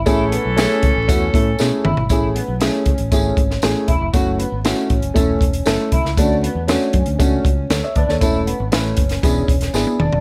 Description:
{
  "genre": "uptempo 1960s-style soul",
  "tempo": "118 BPM",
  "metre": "4/4",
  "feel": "straight",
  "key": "A major",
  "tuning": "A4 = 440 Hz",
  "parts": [
    { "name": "fingered electric bass", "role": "bass", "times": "0.0-10.2 s", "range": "E1 to B2", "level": "-24 LUFS", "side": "equal", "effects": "none" },
    { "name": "clear saxophone section", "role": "second line", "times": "0.1-1.8 s", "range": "E3 to A4", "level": "-24 LUFS", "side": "equal", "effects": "none" },
    { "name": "dark upright piano", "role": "accompaniment", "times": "0.1-10.0 s", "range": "A3 to E5", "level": "-23 LUFS", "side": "equal", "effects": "none" },
    { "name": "electric guitar through a small old amp", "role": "riff", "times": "0.1-10.2 s", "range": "B3 to F#4", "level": "-27 LUFS", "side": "equal", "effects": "analog chorus" },
    { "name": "compact cocktail drum kit", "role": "drums", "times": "0.1-10.2 s", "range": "hi-hat, kick drum, snare drum, toms", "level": "-21 LUFS", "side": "equal", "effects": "none" },
    { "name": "tambourine", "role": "percussion", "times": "0.1-9.9 s", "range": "none", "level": "-36 LUFS", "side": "equal", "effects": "none" }
  ],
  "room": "light reverb",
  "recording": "vinyl crackle",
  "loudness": "-17 LUFS",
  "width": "mono",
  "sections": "0.0-2.1 A section; 2.1-10.2 B section",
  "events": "drum fill 1.6-2.1, 9.7-10.2",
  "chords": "0.1 Amaj7; 4.1 F#m7; 6.2 Dmaj7; 8.2 A/E; 9.2 E7",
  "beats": "| 0.07 0.58 1.09 1.60 | 2.10 2.61 3.12 3.63 | 4.14 4.65 5.16 5.67 | 6.18 6.69 7.20 7.71 | 8.21 8.72 9.23 9.74"
}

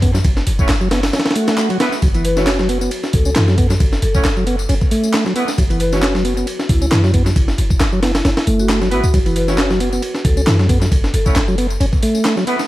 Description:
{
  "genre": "breakbeat, breaks",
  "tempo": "135 BPM",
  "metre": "4/4",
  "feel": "swing 55% on 16ths",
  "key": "F# minor",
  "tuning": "A4 = 441 Hz",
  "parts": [
    { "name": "tonewheel organ", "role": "riff", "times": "0.0-12.6 s", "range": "E3 to C#4", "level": "-20 LUFS", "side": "equal", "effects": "stopped rotary speaker, tube saturation, analog delay" },
    { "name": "warm 808-style bass", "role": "bass", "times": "0.0-11.9 s", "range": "F#1 to F#2", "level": "-17 LUFS", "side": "equal", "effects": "none" },
    { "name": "breakbeat sampler-style drum kit", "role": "drums", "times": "0.0-12.7 s", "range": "kick drum, ride cymbal, snare drum", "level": "-18 LUFS", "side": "equal", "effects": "studio reverb" },
    { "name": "garage drum kit", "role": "drums", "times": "0.0-12.7 s", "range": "handclaps, hi-hat, tambourine", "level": "-26 LUFS", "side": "left 1 dB", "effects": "overdrive, studio reverb, analog delay" },
    { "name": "dark horn section", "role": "stabs", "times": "0.6-6.0, 8.9-12.6 s", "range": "A3 to C#5", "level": "-26 LUFS", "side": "right 2 dB", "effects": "analog delay" },
    { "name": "swell", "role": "sound effects", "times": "1.3-2.0 s", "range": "none", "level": "-28 LUFS", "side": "right 1 dB", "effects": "none" },
    { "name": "marimba with soft mallets", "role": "melody", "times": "2.2-11.6 s", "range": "E4 to B4", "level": "-24 LUFS", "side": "left 1 dB", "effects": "telephone sound, vintage 12-bit sampler grit, analog delay" }
  ],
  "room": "little or no reverb",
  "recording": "echo-heavy mix, vinyl crackle",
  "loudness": "-13 LUFS",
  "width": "side -16 dB against mid",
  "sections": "0.0-12.7 A section",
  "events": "swell 1.3-2.0",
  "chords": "0.0 F#m7",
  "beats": "| 0.25 0.69 1.14 1.58 | 2.02 2.47 2.91 3.36 | 3.80 4.25 4.69 5.14 | 5.58 6.03 6.47 6.91 | 7.36 7.80 8.25 8.69 | 9.14 9.58 10.03 10.47 | 10.91 11.36 11.80 12.25"
}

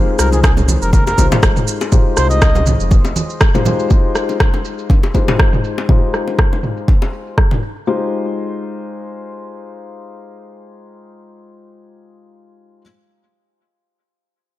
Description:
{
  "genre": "afro house",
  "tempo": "121 BPM",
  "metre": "4/4",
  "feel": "swing 55% on 16ths",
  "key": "F minor",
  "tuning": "A4 = 440 Hz",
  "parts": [
    { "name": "felt-muted upright piano", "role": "stabs", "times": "0.0-12.8 s", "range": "Ab3 to C5", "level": "-22 LUFS", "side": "left 4 dB", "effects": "sidechain pumping, low-pass filter, dub echo" },
    { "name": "dark detuned saw bass", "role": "bass", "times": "0.0-3.1 s", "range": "F1 to C2", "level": "-16 LUFS", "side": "equal", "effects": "sidechain pumping" },
    { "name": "trumpet with cup mute", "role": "melody", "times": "0.2-2.7 s", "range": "Ab4 to Eb5", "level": "-23 LUFS", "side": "right 1 dB", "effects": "dub echo" },
    { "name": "deep house drum kit", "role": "drums", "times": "0.2-7.8 s", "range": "rim click, shaker, toms", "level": "-19 LUFS", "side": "right 1 dB", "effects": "low-pass filter on perc, low-pass filter on hats, low-pass filter on snare, low-pass filter on toms, low-pass filter on room" },
    { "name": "bongos", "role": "percussion", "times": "0.3-7.6 s", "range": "none", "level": "-25 LUFS", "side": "left 4 dB", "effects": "none" },
    { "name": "congas", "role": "percussion", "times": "0.3-3.8 s", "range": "none", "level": "-20 LUFS", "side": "right 3 dB", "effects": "none" },
    { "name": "electronic kick drum", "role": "drums", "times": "0.4-7.5 s", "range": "none", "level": "-13 LUFS", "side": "equal", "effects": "none" }
  ],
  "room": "small room ambience",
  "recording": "none",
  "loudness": "-12 LUFS",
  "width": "side -15 dB against mid",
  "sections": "0.0-7.9 A section; 7.9-11.8 B section",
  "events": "filter sweep on drum 0.0-7.9; filter sweep on felt piano 0.0-7.9",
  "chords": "0.0 Fm9",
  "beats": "0.43 0.93 1.43 | 1.92 2.42 2.91 3.41 | 3.90 4.40 4.90 5.39 | 5.89 6.38 6.88 7.38 | 7.87 8.37 8.86 9.36 | 9.86 10.35 10.85 11.34"
}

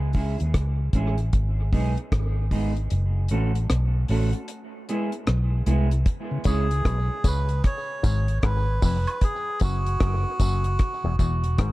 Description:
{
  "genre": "dub reggae",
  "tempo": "76 BPM",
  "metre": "4/4",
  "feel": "swing 63% on 16ths",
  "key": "C# minor",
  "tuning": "A4 = 439 Hz",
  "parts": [
    { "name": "vintage muted fingered electric bass", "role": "bass", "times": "0.0-11.7 s", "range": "E1 to D#2", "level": "-23 LUFS", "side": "equal", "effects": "none" },
    { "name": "mellow electric guitar", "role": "accompaniment", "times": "0.1-6.7 s", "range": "G#3 to A4", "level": "-30 LUFS", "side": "right 2 dB", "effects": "lush chorus, dub echo" },
    { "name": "deep reggae drum kit", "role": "drums", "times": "0.1-11.7 s", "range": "hi-hat, kick drum, rim click", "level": "-24 LUFS", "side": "equal", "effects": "none" },
    { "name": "mellow tonewheel organ", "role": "accompaniment", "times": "6.3-6.4 s", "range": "C#3", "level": "-30 LUFS", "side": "left 2 dB", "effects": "slow rotary speaker" },
    { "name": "melodica", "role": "melody", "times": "6.5-11.2 s", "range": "F#4 to C#5", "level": "-29 LUFS", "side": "right 1 dB", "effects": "dub echo" },
    { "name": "muted clav", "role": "riff", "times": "6.5-11.7 s", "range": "E2 to C#3", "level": "-32 LUFS", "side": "left 5 dB", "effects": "auto-wah, dub echo" },
    { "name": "tambourine and woodblock", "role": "percussion", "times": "6.5-11.4 s", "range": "none", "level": "-37 LUFS", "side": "right 4 dB", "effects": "dub echo" }
  ],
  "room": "small room ambience",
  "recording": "dark, warm production",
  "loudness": "-21 LUFS",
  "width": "side -18 dB against mid",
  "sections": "0.0-6.1 A section; 6.1-11.7 B section",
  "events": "kick muted 2.9-6.1",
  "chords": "0.0 C#m; 1.3 G#m; 2.9 F#m; 4.5 E; 6.1 C#m; 7.6 Fdim; 9.2 F#sus2; 10.8 E",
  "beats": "0.54 1.33 2.12 | 2.91 3.70 4.49 5.27 | 6.06 6.85 7.64 8.43 | 9.22 10.01 10.80 11.59"
}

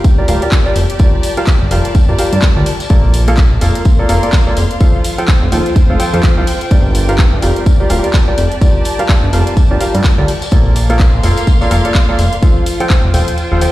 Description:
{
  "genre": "piano house",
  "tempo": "126 BPM",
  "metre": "4/4",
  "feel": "swing 59% on 16ths",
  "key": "G minor",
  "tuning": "A4 = 435 Hz",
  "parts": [
    { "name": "electronic kick drum", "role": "drums", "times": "0.0-13.0 s", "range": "none", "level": "-10 LUFS", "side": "equal", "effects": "none" },
    { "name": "house drum kit", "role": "drums", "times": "0.0-13.7 s", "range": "handclaps, hi-hat", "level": "-22 LUFS", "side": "equal", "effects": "none" },
    { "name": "open jazz drum kit", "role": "drums", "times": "0.0-13.7 s", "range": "hi-hat, snare drum, tambourine", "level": "-30 LUFS", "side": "left 2 dB", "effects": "high-pass filter on hats, high-pass filter on snare, high-pass filter on perc, high-pass filter on room" },
    { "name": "rich studio string section", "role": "texture", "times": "0.0-13.7 s", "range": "Bb3 to C6", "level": "-23 LUFS", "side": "equal", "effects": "sidechain pumping" },
    { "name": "clear baby grand piano", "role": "riff", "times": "0.2-13.7 s", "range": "F3 to G5", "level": "-17 LUFS", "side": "equal", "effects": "sidechain pumping, tape echo" },
    { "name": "fat analog bass", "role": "bass", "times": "0.3-13.7 s", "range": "D1 to G2", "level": "-13 LUFS", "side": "equal", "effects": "sidechain pumping" }
  ],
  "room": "little or no reverb",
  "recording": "played on a big sound system in a bare room, stone room reverb",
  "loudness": "-9 LUFS",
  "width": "side -16 dB against mid",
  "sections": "0.0-13.7 A section",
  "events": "kick drops out 13.4-13.7",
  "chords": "0.0 Gm7; 2.9 Bbmaj7; 4.8 F; 6.7 Gm7; 10.5 Bbmaj7; 12.4 F",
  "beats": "0.04 0.52 | 1.00 1.47 1.95 2.42 | 2.90 3.38 3.85 4.33 | 4.81 5.28 5.76 6.23 | 6.71 7.19 7.66 8.14 | 8.62 9.09 9.57 10.04 | 10.52 11.00 11.47 11.95 | 12.43 12.90 13.38"
}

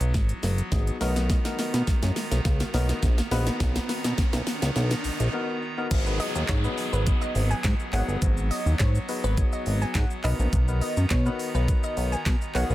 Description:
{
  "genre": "dance-pop",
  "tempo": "104 BPM",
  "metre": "4/4",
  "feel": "straight",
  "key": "G# minor",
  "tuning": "A4 = 439 Hz",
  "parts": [
    { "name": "pipe organ, clarinet reed", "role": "sustained chords", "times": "0.0-12.7 s", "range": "D#3 to A#5", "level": "-36 LUFS", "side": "right 2 dB", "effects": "sidechain pumping, low-pass filter" },
    { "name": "chorused synth bass", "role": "bass", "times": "0.0-12.7 s", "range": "F#1 to B2", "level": "-24 LUFS", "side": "equal", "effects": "sidechain pumping" },
    { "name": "pop drum kit", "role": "drums", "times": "0.0-12.7 s", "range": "crash cymbal, handclaps, hi-hat, kick drum, shaker, snare drum", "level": "-26 LUFS", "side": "equal", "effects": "none" },
    { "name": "riser and downlifter", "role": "sound effects", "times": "0.0-10.5 s", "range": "none", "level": "-37 LUFS", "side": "equal", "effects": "none" },
    { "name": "dark baby grand piano", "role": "accompaniment", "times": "0.7-12.7 s", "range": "B3 to C#5", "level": "-33 LUFS", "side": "left 4 dB", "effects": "sidechain pumping, low-pass filter, analog delay" },
    { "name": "glassy wavetable pluck", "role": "melody", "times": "6.2-12.7 s", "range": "B4 to G#5", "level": "-34 LUFS", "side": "right 1 dB", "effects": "chorus, sidechain pumping, analog delay" }
  ],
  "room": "digital ambience",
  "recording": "echo-heavy mix",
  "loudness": "-23 LUFS",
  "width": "side -15 dB against mid",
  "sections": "0.0-5.9 A section; 5.9-12.7 B section",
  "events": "build-up 0.0-5.9; drum fill 0.0-5.3; riser 0.0-5.9; break 5.3-5.9; drop 5.9-12.7",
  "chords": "0.0 G#m7; 1.0 Bmaj7; 5.9 G#m7; 10.2 Bmaj7",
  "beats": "0.14 0.72 | 1.29 1.87 2.45 3.03 | 3.60 4.18 4.76 5.33 | 5.91 6.49 7.07 7.64 | 8.22 8.79 9.37 9.95 | 10.53 11.10 11.68 12.26"
}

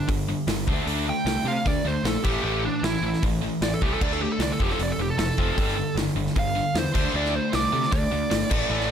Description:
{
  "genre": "hard rock",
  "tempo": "153 BPM",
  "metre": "4/4",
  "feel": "straight",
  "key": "D minor",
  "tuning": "A4 = 440 Hz",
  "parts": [
    { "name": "bluesy overdriven lead guitar", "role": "melody", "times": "0.0-8.9 s", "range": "D4 to G5", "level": "-28 LUFS", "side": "right 4 dB", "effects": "distortion, slapback echo" },
    { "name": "biting overdriven guitar", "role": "riff", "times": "0.0-8.9 s", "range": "F2 to D4", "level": "-29 LUFS", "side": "left 13 dB", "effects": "none" },
    { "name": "tight distorted guitar", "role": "riff", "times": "0.0-8.9 s", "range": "F2 to D4", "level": "-30 LUFS", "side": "right 12 dB", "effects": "distortion" },
    { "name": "fuzz picked electric bass", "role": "bass", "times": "0.1-8.9 s", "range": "F1 to C3", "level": "-29 LUFS", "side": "equal", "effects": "overdrive" },
    { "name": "big rock drum kit", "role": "drums", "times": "0.1-8.9 s", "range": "crash cymbal, hi-hat, kick drum, snare drum", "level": "-28 LUFS", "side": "equal", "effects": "none" }
  ],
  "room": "light reverb",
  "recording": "none",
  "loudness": "-22 LUFS",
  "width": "side -8 dB against mid",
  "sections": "0.0-8.9 A section",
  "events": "lead electric guitar solo 0.0-8.9",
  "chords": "0.0 G5; 0.7 D5; 2.2 A5; 4.0 D5; 4.6 F; 5.6 G5; 6.9 D5",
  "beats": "0.09 0.48 | 0.87 1.26 1.66 2.05 | 2.44 2.83 3.23 3.62 | 4.01 4.40 4.79 5.19 | 5.58 5.97 6.36 6.75 | 7.14 7.54 7.93 8.32 | 8.71"
}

